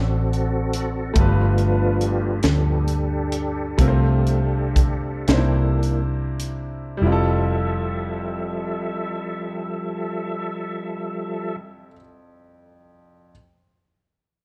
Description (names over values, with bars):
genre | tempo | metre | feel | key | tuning
slow gospel | 32-48 BPM (dotted quarters) | 6/8 | straight | F major | A4 = 441 Hz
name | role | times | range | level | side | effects
clear grand piano | accompaniment | 0.0-13.3 s | F2 to D5 | -29 LUFS | equal | none
tonewheel organ | sustained chords | 0.0-11.6 s | F3 to E5 | -29 LUFS | equal | slow rotary speaker, chorus vibrato
vintage muted fingered electric bass | bass | 0.0-11.9 s | F1 to D2 | -24 LUFS | equal | none
crisp fusion drum kit | drums | 0.3-6.7 s | hi-hat, kick drum, snare drum | -24 LUFS | equal | none
room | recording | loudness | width
light reverb | dark, warm production | -22 LUFS | mono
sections
0.0-7.0 A section; 7.0-10.8 B section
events
tonewheel organ solo 0.0-7.0; slowing down 1.2-7.0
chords
0.0 D7b9; 1.2 G9; 3.8 F/C; 5.3 C9; 7.0 Fmaj9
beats
| 1.16 2.44 | 3.79 5.29 | 7.02 8.91